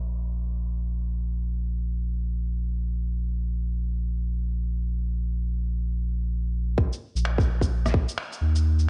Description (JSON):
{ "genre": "future garage", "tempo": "free time", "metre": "none", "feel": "none", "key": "unclear", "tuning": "A4 = 440 Hz", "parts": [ { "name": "warm sub bass", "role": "bass", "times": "0.0-8.9 s", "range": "Bb1 to Eb2", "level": "-28 LUFS", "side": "equal", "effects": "none" }, { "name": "electronic kick drum", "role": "drums", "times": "6.8-8.1 s", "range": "none", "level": "-26 LUFS", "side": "equal", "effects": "overdrive" }, { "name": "electronic shaker, finger snaps and rim click", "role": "drums", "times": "6.9-8.9 s", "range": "none", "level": "-35 LUFS", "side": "equal", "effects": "low-pass filter on snare, low-pass filter on perc, low-pass filter on cymbals" } ], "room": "little or no reverb", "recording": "cassette tape, low-pass filter", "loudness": "-28 LUFS", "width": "mono", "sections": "0.0-6.8 A section; 6.8-8.9 B section", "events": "filter sweep 0.0-6.8", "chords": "none" }